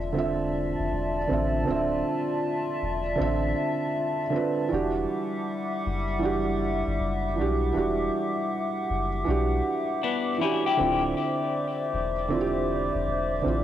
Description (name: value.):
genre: lo-fi hip hop.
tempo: 79 BPM.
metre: 4/4.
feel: swing 66% on 16ths.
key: unclear.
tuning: A4 = 440 Hz.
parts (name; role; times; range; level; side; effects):
felt-muted upright piano; accompaniment; 0.0-13.6 s; D3 to E5; -28 LUFS; right 4 dB; low-pass filter, cassette tape.
warbly tape-like pad; sustained chords; 0.0-13.6 s; G3 to D6; -29 LUFS; left 2 dB; chorus, built-in reverb, low-pass filter, cassette tape.
soft dub sub bass; bass; 0.0-13.6 s; D1 to B1; -31 LUFS; left 2 dB; none.
clean electric guitar; second line; 10.0-11.0 s; B3 to G4; -27 LUFS; left 8 dB; low-pass filter, cassette tape, tape echo.
room: moderate spring reverb, RT60 1.2 s.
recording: home recording on cassette.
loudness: -24 LUFS.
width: side -11 dB against mid.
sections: 0.0-13.6 A section.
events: none.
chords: 0.0 Dm9; 4.7 Em9; 10.8 Dm9.